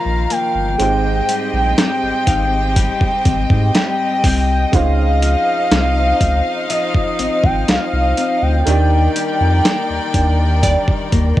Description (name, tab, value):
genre	contemporary R&B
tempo	61 BPM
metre	4/4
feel	straight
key	unclear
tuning	A4 = 440 Hz
part	gliding portamento lead	melody	0.0-11.4 s	Eb5 to Bb5	-19 LUFS	equal	chorus, cassette tape
part	warm baby grand piano	accompaniment	0.0-11.4 s	F3 to D5	-26 LUFS	right 8 dB	none
part	warm chamber string section	sustained chords	0.0-11.4 s	Eb3 to G5	-24 LUFS	equal	sidechain pumping
part	nylon-string guitar	arpeggios	0.0-11.4 s	Ab2 to Eb4	-24 LUFS	left 8 dB	none
part	warm sub bass	bass	0.1-11.4 s	G1 to Ab2	-17 LUFS	equal	none
part	dusty soul sampler-style drum kit	drums	0.3-11.4 s	hi-hat, kick drum, snare drum	-17 LUFS	equal	overdrive, cassette tape
part	glassy wavetable pluck	texture	2.3-11.4 s	D5 to F5	-24 LUFS	right 2 dB	chorus, analog delay
room	light reverb, digital ambience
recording	home recording on cassette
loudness	-13 LUFS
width	side -14 dB against mid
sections	0.0-11.4 A section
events	none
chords	0.0 Cm11; 0.8 Abmaj7; 4.7 Dbmaj9; 8.7 Ebmaj7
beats	| 0.80 1.78 2.76 3.75 | 4.73 5.71 6.70 7.68 | 8.66 9.65 10.63